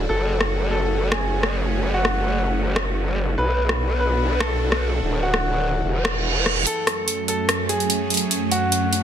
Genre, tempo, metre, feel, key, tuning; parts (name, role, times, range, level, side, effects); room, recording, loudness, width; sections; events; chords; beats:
heavy wobble dubstep; 146 BPM; 4/4; swing 53% on 16ths, half-time; F# minor; A4 = 440 Hz
supersaw pad; sustained chords; 0.0-9.0 s; F#2 to B4; -27 LUFS; right 1 dB; phaser
growl bass; bass; 0.0-6.6 s; D1 to B1; -22 LUFS; equal; chorus, overdrive
clear grand piano; melody; 0.1-9.0 s; F#4 to B4; -26 LUFS; equal; dub echo
dubstep drum kit; drums; 0.4-9.0 s; hi-hat, rim click; -23 LUFS; equal; overdrive, soft clipping on snare, high-pass filter on snare, high-pass filter on hats, high-pass filter on room
reverse cymbal and riser; sound effects; 6.0-9.0 s; -27 LUFS; right 6 dB
light reverb, digital ambience; dense, heavily limited modern master; -19 LUFS; side -9 dB against mid
0.0-6.7 A section; 6.7-9.0 B section
reverse cymbal 6.0-6.7; build-up 6.7-9.0
0.1 F#m; 3.4 Bm; 5.0 D; 5.8 E; 6.7 F#m
| 0.09 0.50 0.91 1.32 | 1.73 2.15 2.56 2.97 | 3.38 3.79 4.20 4.61 | 5.02 5.43 5.84 6.25 | 6.67 7.08 7.49 7.90 | 8.31 8.72